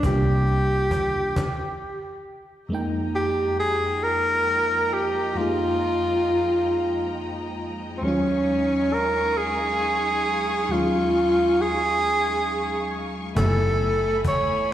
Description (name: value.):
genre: slow six-eight R&B.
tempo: 45 BPM (dotted quarters).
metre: 6/8.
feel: straight.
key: unclear.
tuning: A4 = 440 Hz.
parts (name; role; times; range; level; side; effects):
breathy tenor saxophone; melody; 0.0-14.7 s; C4 to C#5; -22 LUFS; equal; slapback echo, tape echo.
FM electric piano with auto-pan; accompaniment; 0.0-14.7 s; Eb2 to G#5; -29 LUFS; equal; slapback echo.
vintage muted fingered electric bass; bass; 0.0-1.3, 13.4-14.7 s; F#1 to C2; -24 LUFS; equal; none.
cajon; drums; 0.0-1.6, 13.4-14.5 s; none; -28 LUFS; equal; none.
warm studio string section; sustained chords; 2.7-14.7 s; F3 to Db6; -32 LUFS; left 2 dB; none.
room: light reverb, small room ambience.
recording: live gig heard through the venue's PA, recital hall reverb.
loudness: -20 LUFS.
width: side -12 dB against mid.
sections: 0.0-2.7 A section; 2.7-14.7 B section.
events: stop 1.4-2.7.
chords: 0.0 C9sus4; 1.4 N.C.; 2.7 Fm11; 8.0 Ebm11; 13.4 F#m11.